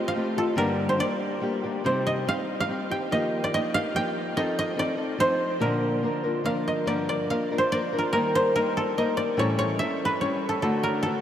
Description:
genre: mexican folk, mariachi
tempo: 144 BPM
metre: 3/4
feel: straight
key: Bb major, G minor from 6.9 s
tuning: A4 = 440 Hz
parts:
  - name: koto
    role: melody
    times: 0.0-11.2 s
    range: G4 to G5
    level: -26 LUFS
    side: right 1 dB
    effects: none
  - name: nylon-string guitar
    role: accompaniment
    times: 0.0-11.2 s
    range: G2 to Bb4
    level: -26 LUFS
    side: left 1 dB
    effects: none
room: wet huge ambient reverb, RT60 8.4 s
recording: in a vast, echoing space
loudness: -23 LUFS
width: side -10 dB against mid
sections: 0.0-6.9 A section; 6.9-11.2 B section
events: none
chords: 0.0 Fadd9; 0.6 Gm; 1.8 Cm; 3.1 Ebadd9; 4.4 F7; 5.6 Bb; 6.9 Gm7; 8.1 Eb; 9.4 A7; 10.6 D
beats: 0.16 | 0.58 0.99 1.42 | 1.84 2.27 2.69 | 3.11 3.53 3.95 | 4.36 4.77 5.19 | 5.60 6.02 6.45 | 6.88 7.30 7.72 | 8.14 8.56 8.97 | 9.38 9.79 10.21 | 10.62 11.04

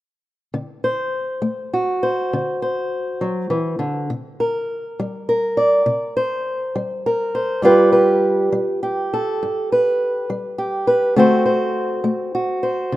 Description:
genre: acoustic country blues, solo or duo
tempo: 68 BPM (dotted quarters)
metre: 12/8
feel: straight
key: unclear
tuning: A4 = 437 Hz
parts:
  - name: fingerpicked old ladder-braced acoustic guitar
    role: solo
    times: 0.5-13.0 s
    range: G2 to D5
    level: -17 LUFS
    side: equal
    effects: none
room: light reverb, studio reverb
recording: rough home demo mix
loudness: -17 LUFS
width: side -15 dB against mid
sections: 0.5-13.0 A section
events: none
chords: 0.5 D7; 4.1 C5; 7.6 G7; 11.2 D7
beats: | 0.55 1.44 2.32 3.21 | 4.10 4.99 5.87 6.76 | 7.64 8.53 9.41 10.29 | 11.17 12.05 12.93

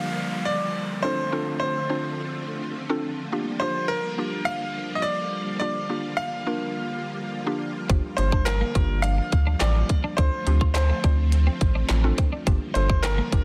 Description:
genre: dance-pop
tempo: 105 BPM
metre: 4/4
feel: straight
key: G minor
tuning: A4 = 445 Hz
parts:
  - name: bright grand piano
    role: melody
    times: 0.0-13.4 s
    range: Bb4 to F5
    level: -31 LUFS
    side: equal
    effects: tape echo
  - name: mallet-like synth pluck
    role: accompaniment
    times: 0.0-13.4 s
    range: Bb3 to C5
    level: -34 LUFS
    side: equal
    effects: chorus, sidechain pumping
  - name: string machine, violas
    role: sustained chords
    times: 0.0-13.4 s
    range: D3 to F4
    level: -34 LUFS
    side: equal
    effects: phaser, ensemble chorus, sidechain pumping
  - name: downlifter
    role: sound effects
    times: 0.0-3.3 s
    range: none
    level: -40 LUFS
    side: equal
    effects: none
  - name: twelve-string electric guitar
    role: riff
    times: 7.9-13.4 s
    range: Bb3 to F4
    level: -36 LUFS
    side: equal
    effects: subtle chorus
  - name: warm sub bass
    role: bass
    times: 7.9-13.4 s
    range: G1 to D2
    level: -24 LUFS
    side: equal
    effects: sidechain pumping
  - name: minimal click drum kit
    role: drums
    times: 7.9-13.4 s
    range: handclaps, hi-hat, kick drum, snare drum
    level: -26 LUFS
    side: equal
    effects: soft clipping on snare
  - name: group handclap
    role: percussion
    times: 8.5-13.2 s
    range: none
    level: -42 LUFS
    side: equal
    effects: none
room: light reverb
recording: dense, heavily limited modern master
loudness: -25 LUFS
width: mono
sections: 0.0-13.4 A section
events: none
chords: 0.0 Gm7; 1.0 Dm7; 3.3 Gm7; 10.2 Dm7; 12.5 Gm7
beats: 0.47 | 1.04 1.61 2.18 2.75 | 3.33 3.90 4.47 5.04 | 5.61 6.18 6.75 7.33 | 7.90 8.47 9.04 9.61 | 10.18 10.75 11.32 11.90 | 12.47 13.04

